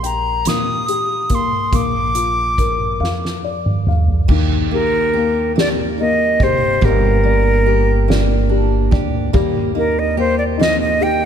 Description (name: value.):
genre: six-eight pop ballad.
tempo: 47 BPM (dotted quarters).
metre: 6/8.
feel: straight.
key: Eb major from 4.3 s.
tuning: A4 = 439 Hz.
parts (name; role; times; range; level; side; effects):
concert flute; melody; 0.0-11.3 s; Bb4 to Eb6; -18 LUFS; equal; slapback echo.
dark upright piano; accompaniment; 0.0-11.3 s; Eb3 to G5; -22 LUFS; left 12 dB; none.
upright bass; bass; 0.0-11.3 s; F1 to Bb2; -20 LUFS; right 1 dB; none.
soft-mallet drum kit; drums; 0.0-11.2 s; crash cymbal, hi-hat, kick drum, ride cymbal, snare drum, toms; -20 LUFS; right 1 dB; none.
fingerpicked steel-string acoustic guitar; arpeggios; 4.3-11.3 s; Bb3 to G4; -24 LUFS; right 13 dB; none.
room: light reverb, studio ambience.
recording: none.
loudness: -14 LUFS.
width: side -8 dB against mid.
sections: 0.0-4.3 A section; 4.3-11.3 B section.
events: drum fill 3.0-4.3.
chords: 0.0 Eb/Bb; 1.7 Bb; 4.3 Eb; 6.8 Gm; 9.3 Eb.